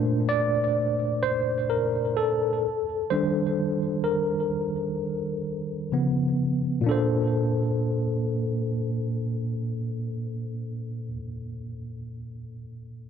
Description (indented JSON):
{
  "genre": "R&B",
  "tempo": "64 BPM",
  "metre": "4/4",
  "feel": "straight",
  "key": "Bb major",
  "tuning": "A4 = 439 Hz",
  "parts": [
    { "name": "tine electric piano", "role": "solo", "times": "0.0-13.1 s", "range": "Bb2 to D5", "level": "-24 LUFS", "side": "equal", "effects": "overdrive, fast stereo tremolo, digital delay" }
  ],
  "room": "moderate lush hall reverb, RT60 2.5 s",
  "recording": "dark, warm production",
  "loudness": "-24 LUFS",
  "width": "side -8 dB against mid",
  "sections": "0.0-6.9 A section; 6.9-10.6 B section",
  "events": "tine electric piano solo 0.0-6.9",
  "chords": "0.0 Bbmaj7; 2.6 Ebmaj7; 5.9 Db7; 6.9 Bbmaj7",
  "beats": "0.29 1.23 2.17 | 3.11 4.04 4.98 5.92 | 6.86 7.79 8.73 9.67"
}